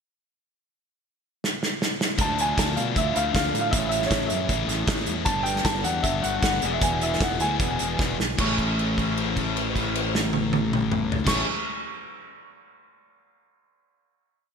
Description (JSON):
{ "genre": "indie rock", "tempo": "155 BPM", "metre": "4/4", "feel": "straight", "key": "A major", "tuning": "A4 = 439 Hz", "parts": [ { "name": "loose indie drum kit", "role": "drums", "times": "1.4-11.4 s", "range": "crash cymbal, hi-hat, kick drum, snare drum, toms", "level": "-26 LUFS", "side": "right 1 dB", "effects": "gated reverb" }, { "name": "warm upright piano", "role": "melody", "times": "2.2-11.4 s", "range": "C#5 to C#6", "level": "-28 LUFS", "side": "equal", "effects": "ping-pong delay" }, { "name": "electric guitar through a small old amp", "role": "riff", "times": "2.2-11.5 s", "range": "E2 to G#4", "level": "-34 LUFS", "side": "right 6 dB", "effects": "wide subtle chorus" }, { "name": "sludgy distorted guitar", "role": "riff", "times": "2.2-11.5 s", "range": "E2 to G#4", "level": "-28 LUFS", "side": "left 8 dB", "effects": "overdrive" }, { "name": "fuzz fingered electric bass", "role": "bass", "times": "2.2-11.4 s", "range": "E1 to B2", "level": "-30 LUFS", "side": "right 1 dB", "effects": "overdrive" } ], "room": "moderate lush hall reverb, RT60 2.0 s", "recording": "bright 1980s-style digital production", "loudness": "-22 LUFS", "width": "side -6 dB against mid", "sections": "0.7-2.2 pickup bar; 2.2-8.4 pre-chorus; 8.4-11.5 final chord", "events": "drum fill 1.4-2.2, 8.0-8.4; held note 8.4-11.3", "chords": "0.7 N.C.; 2.2 Dmadd9; 3.7 Amaj7; 5.3 Gmaj7; 6.6 E7; 8.4 Amaj7" }